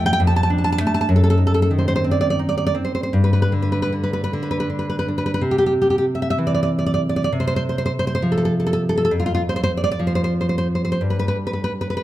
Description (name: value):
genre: romantic piece for solo classical guitar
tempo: 51-68 BPM (dotted quarters)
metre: 6/8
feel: rubato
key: unclear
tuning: A4 = 439 Hz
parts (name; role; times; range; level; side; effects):
- nylon-string guitar; solo; 0.0-12.0 s; F2 to A5; -17 LUFS; equal; none
room: moderate recital hall reverb, RT60 1.6 s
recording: dark, warm production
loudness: -17 LUFS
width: side -14 dB against mid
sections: 0.0-5.4 A section; 5.4-12.0 B section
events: none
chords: 0.2 Dm/F; 1.1 F#dim7; 3.1 G5; 5.4 C; 7.3 F5/C; 9.1 N.C.; 11.0 G5